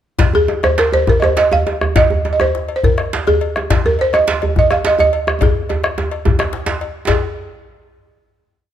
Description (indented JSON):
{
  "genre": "west african traditional, West African drum ensemble",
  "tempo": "135-151 BPM (dotted quarters)",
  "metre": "12/8",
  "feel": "straight",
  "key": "unclear",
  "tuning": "A4 = 439 Hz",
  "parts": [
    { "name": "bombo", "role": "percussion", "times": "0.2-7.2 s", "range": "none", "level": "-19 LUFS", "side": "left 1 dB", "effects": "none" },
    { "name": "cowbell", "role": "percussion", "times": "0.2-7.2 s", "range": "none", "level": "-27 LUFS", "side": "left 9 dB", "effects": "none" },
    { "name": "djembe", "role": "percussion", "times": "0.2-7.2 s", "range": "none", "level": "-22 LUFS", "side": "left 5 dB", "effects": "none" },
    { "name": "djembe", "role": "percussion", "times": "0.2-7.2 s", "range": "none", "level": "-19 LUFS", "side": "right 3 dB", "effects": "none" },
    { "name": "balafon", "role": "melody", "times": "0.3-7.2 s", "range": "Ab4 to F5", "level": "-15 LUFS", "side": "right 1 dB", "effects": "none" }
  ],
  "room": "light reverb",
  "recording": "close, detailed microphones",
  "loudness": "-13 LUFS",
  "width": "side -10 dB against mid",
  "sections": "0.2-7.1 A section; 7.1-8.7 final note",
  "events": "speeding up 0.2-8.7; drum fill 5.4-7.1",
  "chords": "none",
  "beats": "| 0.19 0.63 1.08 1.52 | 1.96 2.40 2.84 3.27 | 3.71 4.14 4.57 4.99 | 5.42 5.84 6.25 6.67 | 7.08"
}